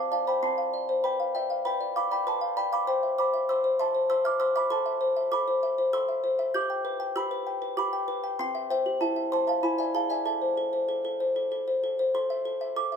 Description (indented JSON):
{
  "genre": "classical, lullaby for music box",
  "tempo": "98 BPM",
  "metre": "3/4",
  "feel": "straight",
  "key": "C major, A minor from 4.7 s",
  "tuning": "A4 = 439 Hz",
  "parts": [
    { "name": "music box", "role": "solo", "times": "0.0-13.0 s", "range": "C4 to G6", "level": "-25 LUFS", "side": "left 1 dB", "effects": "none" }
  ],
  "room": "little or no reverb",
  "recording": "close, detailed microphones",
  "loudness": "-25 LUFS",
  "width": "side -6 dB against mid",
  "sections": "0.0-12.1 A section",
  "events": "none",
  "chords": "0.0 Dm7/C; 1.0 G7/B; 2.9 C; 4.7 Am; 6.5 G; 8.4 C; 9.0 Am/E; 9.6 E7; 10.3 Am",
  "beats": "0.42 | 1.04 1.65 2.26 | 2.87 3.48 4.09 | 4.71 5.32 5.93 | 6.54 7.16 7.78 | 8.39 9.01 9.63 | 10.26 10.89 11.51 | 12.14 12.76"
}